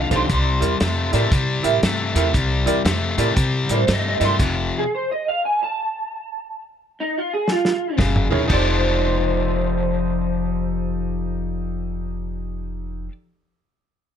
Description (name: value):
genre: electric blues shuffle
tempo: 117 BPM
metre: 4/4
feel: swing 64% on 8ths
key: F mixolydian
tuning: A4 = 440 Hz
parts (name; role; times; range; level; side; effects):
- electric guitar through a small old amp; melody; 0.0-13.1 s; Eb4 to C6; -23 LUFS; right 2 dB; ensemble chorus, plate reverb
- overdriven semi-hollow guitar; riff; 0.0-4.8, 8.0-13.1 s; F2 to D5; -23 LUFS; left 5 dB; none
- upright bass; bass; 0.0-4.7, 8.0-13.1 s; F1 to C3; -23 LUFS; equal; none
- clear concert grand piano; accompaniment; 0.1-4.3, 8.3-13.1 s; Eb4 to E5; -26 LUFS; right 4 dB; none
- warm soul drum kit; drums; 0.1-8.6 s; crash cymbal, hi-hat, kick drum, snare drum, toms; -22 LUFS; equal; none
room: light reverb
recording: none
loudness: -18 LUFS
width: side -8 dB against mid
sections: 0.0-8.5 A section; 8.5-12.6 B section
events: stop 4.4-8.0; drum fill 7.5-8.5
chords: 0.3 C9; 4.4 F; 8.0 Gb9; 8.5 F13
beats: | 0.30 0.81 1.32 1.83 | 2.35 2.86 3.37 3.88 | 4.40 4.91 5.42 5.93 | 6.45 6.96 7.47 7.98 | 8.50 9.01 9.52 10.04 | 10.55 11.06 11.57 12.09